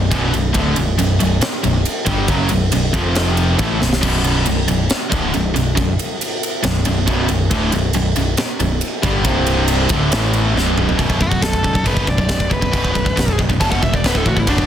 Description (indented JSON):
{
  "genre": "heavy metal",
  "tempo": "138 BPM",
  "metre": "4/4",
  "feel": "straight",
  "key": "B minor",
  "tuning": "A4 = 439 Hz",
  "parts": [
    { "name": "fuzz guitar", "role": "riff", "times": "0.0-11.0 s", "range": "B1 to A3", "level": "-21 LUFS", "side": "equal", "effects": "distortion" },
    { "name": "heavy high-gain guitar", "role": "riff", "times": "0.0-14.7 s", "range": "B1 to A3", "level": "-20 LUFS", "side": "equal", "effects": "distortion" },
    { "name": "growling picked electric bass", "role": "bass", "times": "0.0-14.7 s", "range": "B0 to A1", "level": "-20 LUFS", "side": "equal", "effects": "overdrive" },
    { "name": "tight metal drum kit", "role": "drums", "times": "0.1-14.7 s", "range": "crash cymbal, kick drum, ride cymbal, snare drum, toms", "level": "-20 LUFS", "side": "equal", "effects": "soft clipping on kick" },
    { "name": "high-gain lead guitar", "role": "melody", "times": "11.2-14.7 s", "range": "D4 to A5", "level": "-21 LUFS", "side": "left 1 dB", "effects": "distortion" }
  ],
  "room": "studio reverb",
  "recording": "dense, heavily limited modern master",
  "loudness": "-14 LUFS",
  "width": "side -10 dB against mid",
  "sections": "0.0-11.0 A section; 11.0-14.7 B section",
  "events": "half time 0.0-11.0; drum fill 3.8, 10.6-11.0; lead electric guitar solo 11.0-14.7",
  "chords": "0.0 Bm; 2.9 F5; 3.6 Bm; 9.2 C5; 9.9 D5; 10.1 A5; 10.6 B5; 14.0 D5",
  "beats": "0.12 | 0.55 0.98 1.42 1.85 | 2.29 2.72 3.15 3.59 | 4.02 4.46 4.89 5.33 | 5.76 6.20 6.63 7.07 | 7.50 7.94 8.37 8.81 | 9.24 9.68 10.12 10.55 | 10.99 11.42 11.86 12.29 | 12.73 13.17 13.60 14.04 | 14.47"
}